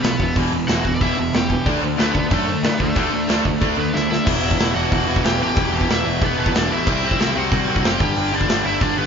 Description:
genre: punk rock.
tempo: 184 BPM.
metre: 4/4.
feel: straight.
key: E minor.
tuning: A4 = 443 Hz.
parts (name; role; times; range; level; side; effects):
cranked stack guitar; melody; 0.0-9.1 s; A3 to G5; -24 LUFS; equal; overdrive.
distorted electric guitar; riff; 0.0-9.1 s; E2 to D4; -24 LUFS; left 9 dB; distortion.
overdriven electric guitar; riff; 0.0-4.3 s; E2 to D4; -26 LUFS; equal; none.
tight distorted guitar; riff; 0.0-9.1 s; E2 to D4; -23 LUFS; right 6 dB; distortion.
modern bright picked electric bass; bass; 0.0-9.1 s; E1 to A2; -26 LUFS; equal; none.
big rock drum kit; drums; 0.0-8.9 s; crash cymbal, hi-hat, kick drum, snare drum; -22 LUFS; equal; none.
room: light reverb.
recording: band playing live in one room, nothing above 7.5 kHz.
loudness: -16 LUFS.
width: side -6 dB against mid.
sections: 0.0-4.3 A section; 4.3-9.1 B section.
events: drum fill 3.9-4.3.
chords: 0.0 Em; 1.7 D5; 4.3 Em; 6.9 C; 8.0 G5.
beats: 0.04 | 0.36 0.69 1.01 1.34 | 1.66 1.99 2.31 2.64 | 2.97 3.29 3.62 3.94 | 4.27 4.59 4.92 5.24 | 5.57 5.89 6.22 6.54 | 6.87 7.19 7.52 7.84 | 8.17 8.49 8.81.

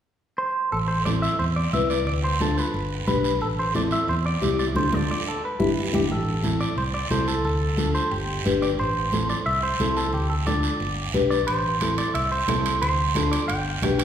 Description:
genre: latin, cumbia.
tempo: 179 BPM.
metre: 4/4.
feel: straight.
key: A minor.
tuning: A4 = 440 Hz.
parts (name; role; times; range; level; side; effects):
clean electric guitar; melody; 0.4-14.0 s; G4 to G5; -26 LUFS; right 1 dB; spring reverb.
fingered electric bass; bass; 0.7-14.0 s; G1 to E2; -27 LUFS; equal; none.
congas; percussion; 0.7-14.0 s; none; -31 LUFS; right 2 dB; none.
guiro; percussion; 0.7-14.0 s; none; -34 LUFS; right 5 dB; none.
nylon-string guitar; accompaniment; 1.1-14.0 s; C4 to B4; -27 LUFS; left 4 dB; none.
timbales; percussion; 11.5-14.0 s; none; -33 LUFS; right 6 dB; none.
room: wet recital hall reverb, RT60 1.5 s.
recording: recorded in a church or concert hall.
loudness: -21 LUFS.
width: side -9 dB against mid.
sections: 0.7-6.1 A section; 6.1-14.0 B section.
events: band accent 4.8-6.1; drum fill 5.6-6.1.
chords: 0.0 N.C.; 0.7 Am; 2.1 Dm; 2.7 G; 3.4 Am; 4.8 Dm; 5.4 G6; 6.1 Am; 7.4 Dm; 8.1 G; 8.8 Am; 10.1 Dm; 10.8 G; 11.5 Am; 12.8 Dm7; 13.5 G.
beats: 0.05 0.39 | 0.72 1.06 1.40 1.73 | 2.07 2.41 2.74 3.08 | 3.41 3.75 4.09 4.42 | 4.76 5.09 5.43 5.77 | 6.10 6.44 6.77 7.11 | 7.45 7.78 8.12 8.45 | 8.79 9.13 9.46 9.80 | 10.13 10.47 10.81 11.14 | 11.48 11.81 12.15 12.49 | 12.82 13.16 13.49 13.83.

